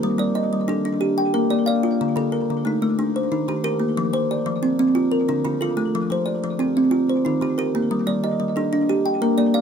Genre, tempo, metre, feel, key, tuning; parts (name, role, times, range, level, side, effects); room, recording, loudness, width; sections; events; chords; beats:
southern african traditional, mbira-style interlocking cycle; 122 BPM (dotted quarters); 12/8; straight; F mixolydian; A4 = 439 Hz
kalimba; arpeggios; 0.0-9.6 s; D3 to G5; -22 LUFS; left 1 dB
kalimba; arpeggios; 0.0-9.6 s; D3 to F5; -22 LUFS; right 1 dB; tape echo
light reverb; close, detailed microphones; -19 LUFS; side -7 dB against mid
0.0-9.6 A section
0.0 Gm; 1.0 Bb; 2.0 Dm; 3.0 Eb; 4.0 F5; 5.0 Dm; 5.9 F; 6.9 Eb; 7.9 Gm; 8.9 Bb
| 0.03 0.52 1.02 1.51 | 2.00 2.49 2.99 3.48 | 3.97 4.46 4.96 5.45 | 5.94 6.43 6.93 7.42 | 7.91 8.40 8.89 9.39